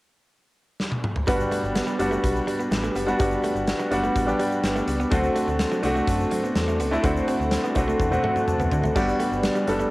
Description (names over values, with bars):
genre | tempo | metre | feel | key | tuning
1980s-style pop | 125 BPM | 4/4 | straight | G major | A4 = 440 Hz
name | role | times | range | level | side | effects
big rock drum kit | drums | 0.8-9.8 s | hi-hat, kick drum, snare drum, splash cymbal, toms | -28 LUFS | equal | cassette tape
clear concert grand piano | accompaniment | 1.3-9.9 s | G3 to A5 | -23 LUFS | equal | cassette tape
direct-recorded clean electric guitar | riff | 1.3-9.9 s | F#3 to C4 | -33 LUFS | right 2 dB | lush chorus, cassette tape, tape echo
funky polysynth comp | stabs | 1.3-9.9 s | B3 to D5 | -30 LUFS | equal | chorus, cassette tape, tape echo
slap-like FM bass | bass | 1.3-9.9 s | F#1 to D3 | -29 LUFS | equal | none
tube shaker | percussion | 1.3-9.9 s | none | -49 LUFS | left 3 dB | none
room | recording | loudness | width
moderate spring reverb, RT60 1.9 s, studio reverb | home recording on cassette | -21 LUFS | side -19 dB against mid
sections
0.0-1.3 A section; 1.3-9.9 B section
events
drum fill 0.8-1.3, 8.0-9.0; grand piano fill 8.0-9.0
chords
0.0 N.C.; 1.3 Gmaj7; 5.1 D7; 9.0 Gmaj7